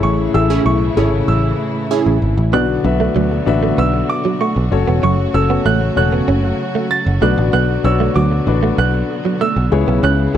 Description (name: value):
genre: pop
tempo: 96 BPM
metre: 4/4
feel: straight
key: B dorian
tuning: A4 = 440 Hz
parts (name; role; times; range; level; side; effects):
- bright concert grand piano; melody; 0.0-10.4 s; C#6 to A6; -22 LUFS; right 5 dB; tape echo
- clear grand piano; accompaniment; 0.0-10.4 s; A2 to E5; -19 LUFS; left 9 dB; none
- rich chamber string section; sustained chords; 0.0-10.4 s; C#3 to F#4; -23 LUFS; right 3 dB; none
- picked electric bass; bass; 0.0-10.4 s; E1 to D2; -16 LUFS; right 1 dB; none
- funky polysynth comp; stabs; 0.5-2.2 s; C#4 to G#4; -17 LUFS; right 6 dB; chorus
- direct-recorded clean electric guitar; riff; 2.5-10.4 s; F#3 to C#4; -20 LUFS; right 7 dB; ensemble chorus
room: light reverb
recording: dry, close 1970s-style studio recording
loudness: -13 LUFS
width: side -10 dB against mid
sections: 0.0-10.4 A section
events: band accent 0.0-2.5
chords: 0.0 Amaj7; 2.5 Bm; 4.7 F#m; 7.2 Bm; 9.7 C#m7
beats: | 0.03 0.66 1.28 1.91 | 2.53 3.16 3.78 4.41 | 5.03 5.66 6.28 6.91 | 7.53 8.16 8.78 9.41 | 10.03